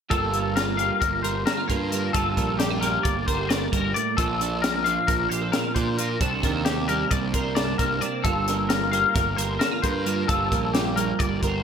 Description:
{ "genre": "math rock and midwest emo", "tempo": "265 BPM (eighths)", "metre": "9/8", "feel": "straight", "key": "G minor", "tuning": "A4 = 438 Hz", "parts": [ { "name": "twelve-string electric guitar", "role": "accompaniment", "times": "0.1-11.6 s", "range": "G2 to Bb4", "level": "-27 LUFS", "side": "right 6 dB", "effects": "ensemble chorus" }, { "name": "twangy electric guitar", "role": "arpeggios", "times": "0.1-11.6 s", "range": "G4 to F5", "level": "-26 LUFS", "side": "left 6 dB", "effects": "ensemble chorus" }, { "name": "fuzz picked electric bass", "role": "bass", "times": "0.1-11.6 s", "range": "G1 to Bb2", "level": "-29 LUFS", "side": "equal", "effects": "overdrive" }, { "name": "crisp fusion drum kit", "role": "drums", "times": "0.1-11.5 s", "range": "hi-hat, kick drum, snare drum", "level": "-27 LUFS", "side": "equal", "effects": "gated reverb" } ], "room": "light reverb, studio ambience", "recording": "bright 1980s-style digital production", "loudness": "-21 LUFS", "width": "side -7 dB against mid", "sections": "0.1-11.6 A section", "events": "none", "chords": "0.1 Gm11; 4.2 Bbmaj9; 6.2 Cm9; 8.2 Gm11", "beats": "| 0.11 0.33 0.56 0.79 1.01 1.24 1.47 1.69 1.92 | 2.14 2.37 2.60 2.82 3.05 3.27 3.50 3.73 3.95 | 4.18 4.41 4.63 4.86 5.08 5.31 5.53 5.76 5.99 | 6.21 6.44 6.67 6.89 7.12 7.34 7.57 7.79 8.02 | 8.25 8.47 8.70 8.93 9.15 9.38 9.61 9.83 10.06 | 10.29 10.51 10.74 10.96 11.19 11.42" }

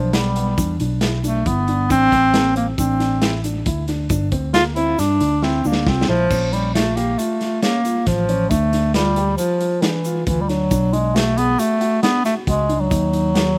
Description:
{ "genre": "progressive instrumental, band music in an uneven meter", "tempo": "136 BPM", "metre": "5/4", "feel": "straight", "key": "unclear", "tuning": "A4 = 443 Hz", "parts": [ { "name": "clear bass clarinet", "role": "melody", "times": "0.0-13.6 s", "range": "E3 to F4", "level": "-21 LUFS", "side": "equal", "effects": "none" }, { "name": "dark baby grand piano", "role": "arpeggios", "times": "0.0-13.5 s", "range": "Bb3 to Ab4", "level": "-29 LUFS", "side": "equal", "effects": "none" }, { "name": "fingered electric bass", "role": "bass", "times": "0.0-13.6 s", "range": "G1 to G2", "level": "-24 LUFS", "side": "equal", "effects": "none" }, { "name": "raw garage drum kit", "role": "drums", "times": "0.1-13.5 s", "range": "crash cymbal, hi-hat, kick drum, snare drum", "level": "-26 LUFS", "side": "equal", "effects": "none" }, { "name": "tube shaker", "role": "percussion", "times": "0.4-13.5 s", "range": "none", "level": "-39 LUFS", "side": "equal", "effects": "none" } ], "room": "little or no reverb", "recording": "recorded outdoors, with no room sound", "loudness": "-19 LUFS", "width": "mono", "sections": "0.0-6.3 A section; 6.3-13.6 B section", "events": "bass clarinet solo 0.0-6.3; drum fill 5.4-6.3", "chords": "0.0 Em; 1.9 Am; 4.1 Gm; 6.3 Bbm; 8.5 Dmadd9; 10.7 Bm; 12.9 Ebm", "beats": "0.14 0.58 1.02 1.46 | 1.90 2.34 2.78 3.22 3.66 | 4.11 4.54 4.99 5.42 5.87 | 6.31 6.75 7.19 7.63 8.07 | 8.51 8.95 9.39 9.83 10.27 | 10.71 11.15 11.59 12.03 12.47 | 12.91 13.35" }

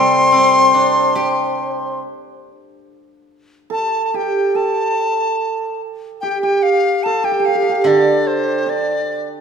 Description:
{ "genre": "chinese traditional, Chinese chamber ensemble", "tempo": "72 BPM", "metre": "4/4", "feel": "rubato", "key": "C zhi mode", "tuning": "A4 = 444 Hz", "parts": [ { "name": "bright reedy large dizi", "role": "melody", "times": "0.0-9.3 s", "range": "C5 to C6", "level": "-17 LUFS", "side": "left 2 dB", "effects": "none" }, { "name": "breathy mellow low xiao", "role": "second line", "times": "0.0-2.0 s", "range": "C5", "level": "-22 LUFS", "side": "left 2 dB", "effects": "none" }, { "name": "hammered dulcimer", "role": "second line", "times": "0.0-9.4 s", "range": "D4 to C5", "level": "-18 LUFS", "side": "right 3 dB", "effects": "none" }, { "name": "steel-string zither", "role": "accompaniment", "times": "0.0-9.4 s", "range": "C3 to G4", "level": "-20 LUFS", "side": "right 2 dB", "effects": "none" } ], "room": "moderate scoring stage reverb, RT60 1.6 s", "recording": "minimal, uncompressed stereo recording", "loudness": "-14 LUFS", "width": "side -7 dB against mid", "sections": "0.0-2.9 A section; 2.9-9.4 B section", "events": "none", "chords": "none", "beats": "0.32 1.15 2.01 | 2.87 3.71 4.55 5.39 | 6.22 7.04 7.86 8.66" }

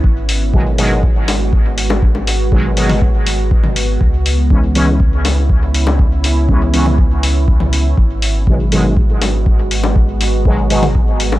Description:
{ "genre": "dub techno", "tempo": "121 BPM", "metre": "4/4", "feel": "straight", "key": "unclear", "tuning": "A4 = 440 Hz", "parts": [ { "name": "deep dark ambient pad", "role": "sustained chords", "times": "0.0-11.4 s", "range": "G#3 to F#4", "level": "-23 LUFS", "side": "right 2 dB", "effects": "chorus, built-in reverb, sidechain pumping" }, { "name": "warm sub bass", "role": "bass", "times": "0.0-11.4 s", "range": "G#1 to C#2", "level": "-16 LUFS", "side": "equal", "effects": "transformer saturation, sidechain pumping" }, { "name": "electronic kick drum", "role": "drums", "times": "0.0-11.1 s", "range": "none", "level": "-14 LUFS", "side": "equal", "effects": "none" }, { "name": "electronic hi-hat", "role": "drums", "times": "0.3-11.3 s", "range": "none", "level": "-21 LUFS", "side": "left 2 dB", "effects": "none" }, { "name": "resonant sweep polysynth", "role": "stabs", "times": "0.5-10.8 s", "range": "B2 to C#4", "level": "-20 LUFS", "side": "equal", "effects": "chorus, phaser, cassette tape, sidechain pumping, dub echo" }, { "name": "electronic bongos and toms", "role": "percussion", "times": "1.3-11.4 s", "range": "none", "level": "-22 LUFS", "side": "left 3 dB", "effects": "overdrive, sidechain pumping on perc, sidechain pumping on toms, dub echo" } ], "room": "little or no reverb", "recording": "dry, gritty hardware recording, transformer saturation", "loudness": "-11 LUFS", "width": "side -16 dB against mid", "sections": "0.0-11.4 A section", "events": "filter sweep on analog polysynth 0.0-11.4", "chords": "0.0 G#m7; 4.0 C#m7; 8.0 G#m7", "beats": "| 0.04 0.54 1.03 1.53 | 2.02 2.52 3.02 3.51 | 4.01 4.50 5.00 5.50 | 5.99 6.49 6.98 7.48 | 7.98 8.47 8.97 9.46 | 9.96 10.46 10.95" }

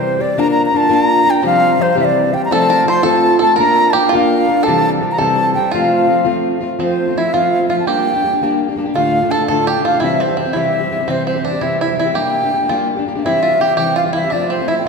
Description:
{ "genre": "celtic folk", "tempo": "112 BPM (dotted quarters)", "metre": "6/8", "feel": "straight", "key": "F major", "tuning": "A4 = 441 Hz", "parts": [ { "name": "wooden flute", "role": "melody", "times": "0.0-14.9 s", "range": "C5 to C6", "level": "-15 LUFS", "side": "equal", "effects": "none" }, { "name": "fingerpicked plugged-in steel-string acoustic guitar", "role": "accompaniment", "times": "0.0-14.9 s", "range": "D2 to Bb4", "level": "-17 LUFS", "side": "left 2 dB", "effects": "none" }, { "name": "bluegrass banjo", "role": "second line", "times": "2.5-14.8 s", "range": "C4 to C5", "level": "-20 LUFS", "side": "right 3 dB", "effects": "none" } ], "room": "wet church reverb, RT60 2.9 s", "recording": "recorded in a church or concert hall", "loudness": "-12 LUFS", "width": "side -4 dB against mid", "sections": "0.0-6.8 A section; 6.8-14.9 B section", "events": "none", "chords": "0.4 Bb; 1.4 Csus4; 2.0 C; 2.5 F; 3.6 Bb; 4.7 C; 5.7 F; 7.9 Gm; 9.0 Dm; 10.0 C; 12.2 Gm; 13.2 C; 14.3 F", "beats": "| 0.38 0.91 | 1.45 1.98 | 2.52 3.06 | 3.59 4.13 | 4.66 5.20 | 5.73 6.27 | 6.80 7.34 | 7.88 8.41 | 8.95 9.49 | 10.03 10.56 | 11.10 11.63 | 12.17 12.71 | 13.24 13.78 | 14.31 14.85" }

